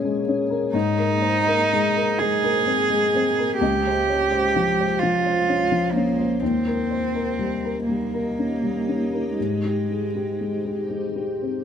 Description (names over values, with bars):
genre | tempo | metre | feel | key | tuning
neoclassical piano and strings | 42 BPM (dotted quarters) | 6/8 | uneven beats, rubato | Ab major | A4 = 440 Hz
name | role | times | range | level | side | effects
dark upright piano | accompaniment | 0.0-11.6 s | Db2 to Db5 | -24 LUFS | left 4 dB | none
granular cloud pad | sustained chords | 0.0-11.6 s | Ab3 to Eb5 | -32 LUFS | right 1 dB | built-in reverb
warm cello | second line | 0.7-10.9 s | Ab3 to Ab4 | -22 LUFS | right 4 dB | none
room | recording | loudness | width
light reverb | none | -20 LUFS | side -8 dB against mid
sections
0.0-11.6 A section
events
none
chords
0.0 Bbm7; 0.7 Abadd9; 3.6 Dbmaj7; 6.4 Eb7; 9.4 Abmaj7